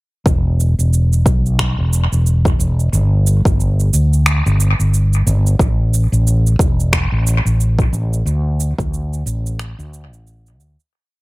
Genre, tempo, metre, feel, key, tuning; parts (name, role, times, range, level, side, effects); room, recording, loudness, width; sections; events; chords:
organic downtempo; 90 BPM; 4/4; swing 58% on 16ths; A4 = 442 Hz
fretless electric bass; bass; 0.3-10.8 s; E1 to D2; -14 LUFS; equal; sidechain pumping
electronic cabasa and finger snaps; drums; 0.3-10.9 s; -23 LUFS; right 2 dB; overdrive, analog delay
electronic kick drum; drums; 0.3-8.9 s; -17 LUFS; equal; overdrive
digital ambience; echo-heavy mix; -13 LUFS; side -21 dB against mid
0.3-10.9 groove
fade-out 7.4-10.9